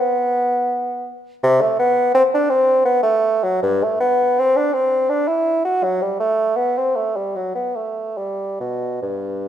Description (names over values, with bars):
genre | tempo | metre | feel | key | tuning
classical, baroque-style fantasia for unaccompanied bassoon | 69-86 BPM | 3/4 | rubato | G major | A4 = 440 Hz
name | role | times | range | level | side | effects
mellow bassoon | solo | 0.0-9.5 s | G2 to F#4 | -16 LUFS | equal | none
room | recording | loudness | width
wet recital hall reverb, RT60 1.8 s | minimal, uncompressed stereo recording | -16 LUFS | side -10 dB against mid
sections
0.0-9.5 A section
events
none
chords
none